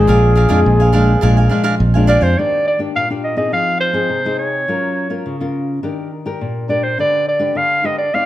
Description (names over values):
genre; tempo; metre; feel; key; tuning
samba; 104 BPM; 4/4; straight; Eb major; A4 = 441 Hz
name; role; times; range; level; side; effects
breathy flugelhorn; second line; 0.0-1.8 s; Ab4; -16 LUFS; left 2 dB; none
cavaquinho; accompaniment; 0.0-2.4 s; D4 to Ab5; -21 LUFS; right 5 dB; none
nylon-string guitar; accompaniment; 0.0-8.3 s; F2 to D5; -20 LUFS; left 2 dB; none
fingered electric bass; bass; 0.0-2.3 s; Bb1 to F2; -13 LUFS; right 1 dB; none
clear clarinet; melody; 2.1-8.3 s; C5 to F5; -16 LUFS; right 1 dB; none
room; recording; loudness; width
moderate large studio reverb, RT60 1.4 s; none; -13 LUFS; side -14 dB against mid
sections
0.0-2.4 A section; 2.4-8.3 B section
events
flugelhorn solo 0.0-2.4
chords
0.1 Bb7; 2.4 Ebmaj7; 3.5 Fm7; 4.7 Gbmaj7; 5.8 Ebmaj7; 7.0 G/D